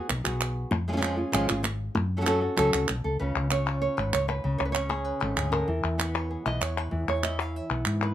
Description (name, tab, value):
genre	flamenco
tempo	193 BPM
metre	4/4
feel	straight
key	unclear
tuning	A4 = 438 Hz
part	flamenco guitar	melody	0.0-8.1 s	G#2 to E#5	-28 LUFS	right 1 dB	plate reverb
part	woody fretless electric bass	bass	0.1-8.1 s	G#1 to G#2	-30 LUFS	left 1 dB	none
part	palmas hand claps	percussion	0.1-8.1 s	none	-30 LUFS	equal	none
room	light reverb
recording	none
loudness	-25 LUFS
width	side -11 dB against mid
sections	0.0-3.2 A section; 3.2-8.1 B section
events	none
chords	0.0 Eadd9 (rootless); 0.7 C#/E#; 2.0 F#m; 3.2 C#; 5.7 E5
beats	0.10 0.41 | 0.72 1.03 1.34 1.65 | 1.96 2.27 2.58 2.89 | 3.20 3.51 3.82 4.13 | 4.45 4.76 5.07 5.38 | 5.69 6.00 6.31 6.62 | 6.93 7.24 7.55 7.86